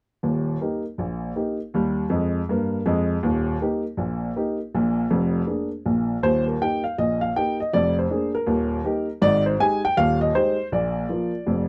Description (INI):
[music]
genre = jazz, stride piano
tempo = 160 BPM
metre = 4/4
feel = swing 64% on 8ths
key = Eb major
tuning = A4 = 440 Hz
[part]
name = warm upright piano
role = solo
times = 0.2-11.7 s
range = Eb1 to Ab5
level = -23 LUFS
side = equal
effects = none
[sound]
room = moderate booth ambience, RT60 0.2 s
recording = dry, close 1970s-style studio recording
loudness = -23 LUFS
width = mono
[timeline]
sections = 0.2-6.2 A section; 6.2-11.7 B section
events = none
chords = 0.2 Eb; 1.7 Bb5/Eb; 3.2 Eb; 4.7 Bb7; 6.2 Eb; 7.7 Bb7/F; 8.5 Eb; 9.2 Abmaj7; 10.7 Bb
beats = | 0.23 0.61 0.98 1.35 | 1.73 2.10 2.48 2.85 | 3.23 3.60 3.98 4.35 | 4.73 5.10 5.47 5.85 | 6.22 6.60 6.97 7.35 | 7.72 8.09 8.47 8.84 | 9.22 9.59 9.96 10.34 | 10.71 11.09 11.46